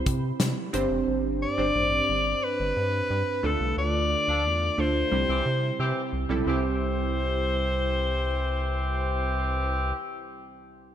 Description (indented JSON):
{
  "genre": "1980s-style pop",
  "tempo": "89 BPM",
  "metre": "4/4",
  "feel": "straight",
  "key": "C major",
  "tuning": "A4 = 441 Hz",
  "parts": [
    { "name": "bright alto saxophone", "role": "melody", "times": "0.0-9.9 s", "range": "A4 to D5", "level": "-28 LUFS", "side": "left 2 dB", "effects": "none" },
    { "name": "glassy digital keys", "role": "accompaniment", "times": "0.0-10.9 s", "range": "C2 to B5", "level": "-30 LUFS", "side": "right 3 dB", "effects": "chorus" },
    { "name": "rubbery square bass", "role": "bass", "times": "0.0-9.9 s", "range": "F1 to C3", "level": "-29 LUFS", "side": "equal", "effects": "none" },
    { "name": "modern studio drum kit", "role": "drums", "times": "0.1-0.9 s", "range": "hi-hat, kick drum, snare drum", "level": "-28 LUFS", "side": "left 1 dB", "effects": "gated reverb" },
    { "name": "clear horn section", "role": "stabs", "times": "4.3-9.9 s", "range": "E3 to A4", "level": "-32 LUFS", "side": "equal", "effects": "ping-pong delay" }
  ],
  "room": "moderate plate reverb, RT60 2.8 s",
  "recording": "bright 1980s-style digital production",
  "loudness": "-24 LUFS",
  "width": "side -10 dB against mid",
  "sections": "0.0-6.5 A section; 6.5-9.2 B section",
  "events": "band accent 3.8-6.5",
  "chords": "0.0 Cmaj7; 0.7 Gsus4; 3.4 Dm; 5.1 C"
}